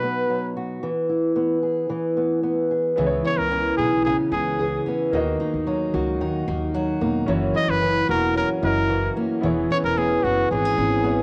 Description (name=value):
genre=pop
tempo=112 BPM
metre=4/4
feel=straight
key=unclear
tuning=A4 = 440 Hz
part: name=bright trumpet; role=melody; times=0.0-11.2 s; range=F#4 to D#5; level=-25 LUFS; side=equal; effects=cassette tape
part: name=fingerpicked old ladder-braced acoustic guitar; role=accompaniment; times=0.0-11.2 s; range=F#2 to G#4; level=-25 LUFS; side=equal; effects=cassette tape
part: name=bright concert grand piano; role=accompaniment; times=3.0-11.2 s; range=A#3 to D#5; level=-35 LUFS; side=equal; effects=cassette tape
part: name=picked steel-string acoustic guitar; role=arpeggios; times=3.0-11.2 s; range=E3 to G#4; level=-31 LUFS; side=equal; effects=cassette tape, tape echo
part: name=upright bass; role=bass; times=3.0-11.2 s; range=E1 to D#2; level=-31 LUFS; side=equal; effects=none
room=light reverb, studio reverb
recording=home recording on cassette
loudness=-22 LUFS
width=mono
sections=0.0-3.0 A section; 3.0-11.2 B section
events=none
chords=0.0 B; 0.8 E; 3.0 C#m7; 5.1 F#7; 9.4 E6